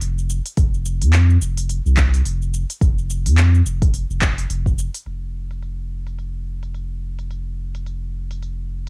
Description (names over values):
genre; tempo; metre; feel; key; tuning
organic downtempo; 107 BPM; 4/4; swing 58% on 16ths; unclear; A4 = 441 Hz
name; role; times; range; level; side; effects
warm sub bass; bass; 0.0-8.9 s; F1 to F2; -19 LUFS; equal; sidechain pumping
afro-pop drum kit; drums; 0.0-8.9 s; handclaps, hi-hat, shaker; -25 LUFS; equal; low-pass filter on hats, small room ambience, cassette tape, low-pass filter on perc, low-pass filter on snare
electronic kick drum; drums; 0.6-4.8 s; none; -17 LUFS; equal; small room ambience, cassette tape
room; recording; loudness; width
little or no reverb; home recording on cassette; -17 LUFS; side -36 dB against mid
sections
0.0-5.1 A section; 5.1-8.9 B section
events
filter sweep on drum 5.1-8.9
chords
none